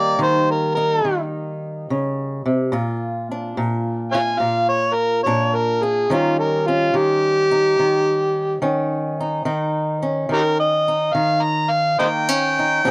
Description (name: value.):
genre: acoustic country blues, solo or duo.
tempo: 71 BPM.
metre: 4/4.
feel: swing 68% on 8ths.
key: unclear.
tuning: A4 = 437 Hz.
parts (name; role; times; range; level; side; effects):
overdriven harmonica; melody; 0.0-12.9 s; Eb4 to Bb5; -20 LUFS; equal; none.
fingerpicked swing-style acoustic guitar; accompaniment; 0.0-12.9 s; Bb2 to Ab4; -24 LUFS; equal; none.
room: light reverb.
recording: close, detailed microphones.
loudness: -20 LUFS.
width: mono.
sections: 0.0-12.9 A section.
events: none.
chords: 0.0 Eb7; 2.7 Bb; 6.1 Eb7.